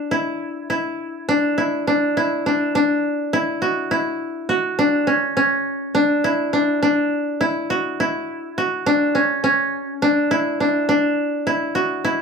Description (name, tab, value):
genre	progressive instrumental, progressive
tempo	206 BPM (eighths)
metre	7/8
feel	straight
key	unclear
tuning	A4 = 440 Hz
part	koto	solo	0.0-12.2 s	C#4 to F#4	-18 LUFS	equal	none
room	wet small room reverb, RT60 0.6 s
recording	heard from further back in the room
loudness	-18 LUFS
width	side -6 dB against mid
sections	0.0-2.2 A section; 2.2-12.2 B section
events	none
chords	0.0 Dadd9; 4.2 Dmaj7; 6.2 Dadd9; 8.3 C#madd11; 10.3 Dadd9